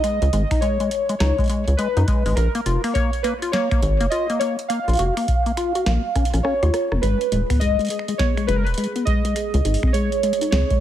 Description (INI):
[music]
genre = IDM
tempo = 103 BPM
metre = 4/4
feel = swing 62% on 16ths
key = unclear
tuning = A4 = 440 Hz
[part]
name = warbly lo-fi synth keys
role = melody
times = 0.0-10.8 s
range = Bb4 to F5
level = -24 LUFS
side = right 2 dB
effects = chorus, phaser, tape echo
[part]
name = deep acid bass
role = arpeggios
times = 0.0-10.8 s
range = Ab3 to Gb4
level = -25 LUFS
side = left 3 dB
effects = digital delay
[part]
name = booming analog drum machine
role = drums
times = 0.0-10.8 s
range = finger snaps, hi-hat, rim click, snare drum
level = -30 LUFS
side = equal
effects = small room ambience
[part]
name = rubbery square bass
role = bass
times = 0.2-10.6 s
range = Eb1 to Gb2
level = -19 LUFS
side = equal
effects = none
[part]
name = electronic kick drum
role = drums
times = 0.5-10.8 s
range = none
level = -22 LUFS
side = equal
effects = small room ambience
[part]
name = pulsing gated texture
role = texture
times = 7.4-10.8 s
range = Ab3 to Ab4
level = -32 LUFS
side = left 1 dB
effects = chorus, built-in reverb
[sound]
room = little or no reverb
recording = none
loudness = -18 LUFS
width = side -11 dB against mid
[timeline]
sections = 0.0-10.8 A section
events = drum fill 6.2-7.0; kick drops out 6.4-7.0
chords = 0.0 Dbsus2; 2.4 Bbm; 4.7 Gbmaj7; 7.0 Abm; 9.4 Dbsus2